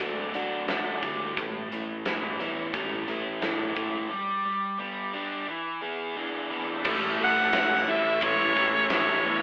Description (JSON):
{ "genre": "classic rock", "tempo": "88 BPM", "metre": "4/4", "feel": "straight", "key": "A mixolydian", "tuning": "A4 = 441 Hz", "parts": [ { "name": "overdriven electric guitar", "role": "riff", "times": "0.0-9.4 s", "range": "A2 to G#4", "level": "-34 LUFS", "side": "equal", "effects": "none" }, { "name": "overdriven semi-hollow guitar", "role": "riff", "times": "0.0-9.4 s", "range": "A2 to G4", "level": "-36 LUFS", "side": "equal", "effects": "none" }, { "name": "modern bright fingered electric bass", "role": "bass", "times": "0.0-9.4 s", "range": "E1 to D3", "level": "-37 LUFS", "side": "equal", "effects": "none" }, { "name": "huge arena drum kit", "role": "drums", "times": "0.0-9.1 s", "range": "crash cymbal, hi-hat, kick drum, ride cymbal, snare drum", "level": "-33 LUFS", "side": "equal", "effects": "none" }, { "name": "tonewheel organ", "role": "sustained chords", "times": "6.6-9.4 s", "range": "A3 to E5", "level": "-37 LUFS", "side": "equal", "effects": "none" }, { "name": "biting overdriven guitar", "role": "riff", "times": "6.8-9.4 s", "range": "A2 to A3", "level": "-36 LUFS", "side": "equal", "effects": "none" }, { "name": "clear harmonica", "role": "melody", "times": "7.2-9.4 s", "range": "C#5 to F#5", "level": "-26 LUFS", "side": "equal", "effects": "none" } ], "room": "moderate studio reverb, RT60 0.8 s", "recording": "band playing live in one room, telephone sound", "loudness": "-28 LUFS", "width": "mono", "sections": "0.0-6.9 A section; 6.9-9.4 B section", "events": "none", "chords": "0.0 D; 1.4 A; 4.1 G; 5.5 E7; 6.9 A" }